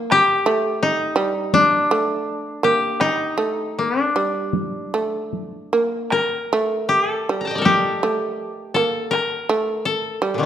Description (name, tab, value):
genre	japanese traditional, Japanese chamber music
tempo	75-85 BPM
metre	4/4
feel	rubato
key	unclear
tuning	A4 = 440 Hz
part	koto	melody	0.0-10.5 s	Bb2 to Bb5	-20 LUFS	left 2 dB	none
part	shamisen	second line	0.0-10.5 s	G3 to Bb3	-23 LUFS	right 3 dB	none
part	taiko ensemble	percussion	0.1-9.3 s	none	-25 LUFS	left 1 dB	none
room	moderate recital hall reverb, RT60 1.4 s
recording	none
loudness	-18 LUFS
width	side -10 dB against mid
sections	0.0-10.5 A section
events	none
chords	none